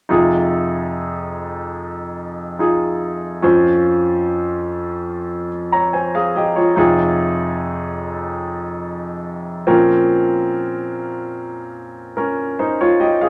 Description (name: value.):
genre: pop.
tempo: 72 BPM.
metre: 4/4.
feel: straight.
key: F minor.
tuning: A4 = 440 Hz.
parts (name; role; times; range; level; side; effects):
clear concert grand piano; accompaniment; 0.1-13.3 s; F2 to Bb5; -19 LUFS; equal; none.
room: moderate studio reverb, RT60 0.8 s.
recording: none.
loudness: -19 LUFS.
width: mono.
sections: 0.1-13.3 A section.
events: none.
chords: 0.1 Fm7; 3.4 Dbmaj7/F; 6.8 Fm7; 9.7 Bbmadd9.